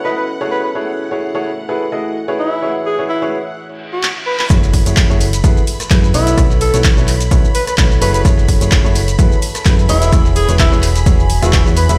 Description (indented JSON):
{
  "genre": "piano house",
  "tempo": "128 BPM",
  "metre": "4/4",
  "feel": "swing 54% on 16ths",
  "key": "F# minor",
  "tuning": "A4 = 440 Hz",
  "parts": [
    { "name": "breathy tenor saxophone", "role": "melody", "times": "0.0-12.0 s", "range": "E4 to B4", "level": "-23 LUFS", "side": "equal", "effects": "dub echo" },
    { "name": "string machine, violins", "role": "sustained chords", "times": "0.0-12.0 s", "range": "F#5 to B5", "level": "-32 LUFS", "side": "equal", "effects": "ensemble chorus, sidechain pumping" },
    { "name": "clear upright piano", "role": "riff", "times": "0.0-12.0 s", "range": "E4 to E5", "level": "-23 LUFS", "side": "equal", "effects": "sidechain pumping, dub echo" },
    { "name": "deep dark ambient pad", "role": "texture", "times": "0.0-12.0 s", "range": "A3 to A5", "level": "-33 LUFS", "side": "equal", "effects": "chorus, built-in reverb, sidechain pumping" },
    { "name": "reverse cymbal and impact", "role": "sound effects", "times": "3.8-6.4 s", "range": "none", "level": "-29 LUFS", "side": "equal", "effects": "none" },
    { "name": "punchy analog drum machine", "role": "drums", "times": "4.0-12.0 s", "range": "handclaps, hi-hat, rim click, shaker", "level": "-23 LUFS", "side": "equal", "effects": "none" },
    { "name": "solid FM bass", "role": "bass", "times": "4.5-12.0 s", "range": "E1 to F#2", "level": "-18 LUFS", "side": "equal", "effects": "sidechain pumping" },
    { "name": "dusty soul sampler-style drum kit", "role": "drums", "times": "4.5-11.9 s", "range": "hi-hat, shaker, snare drum", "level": "-33 LUFS", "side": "equal", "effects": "none" },
    { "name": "electronic kick drum", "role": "drums", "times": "4.5-11.6 s", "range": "none", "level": "-15 LUFS", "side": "equal", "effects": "none" }
  ],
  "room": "little or no reverb",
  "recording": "played on a big sound system in a bare room, stone room reverb",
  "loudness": "-14 LUFS",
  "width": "mono",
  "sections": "0.0-4.5 A section; 4.5-12.0 B section",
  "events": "reverse cymbal 3.8-4.5; drum fill 4.0-4.5; drop 4.5-12.0; impact 4.5-6.4",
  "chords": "0.0 B9sus4; 2.4 E69; 4.5 F#m9; 6.1 B9sus4; 8.0 F#m9; 9.9 E69",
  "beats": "0.28 | 0.75 1.22 1.69 2.16 | 2.63 3.10 3.56 4.03 | 4.50 4.97 5.44 5.91 | 6.38 6.84 7.31 7.78 | 8.25 8.72 9.19 9.66 | 10.13 10.60 11.06 11.53"
}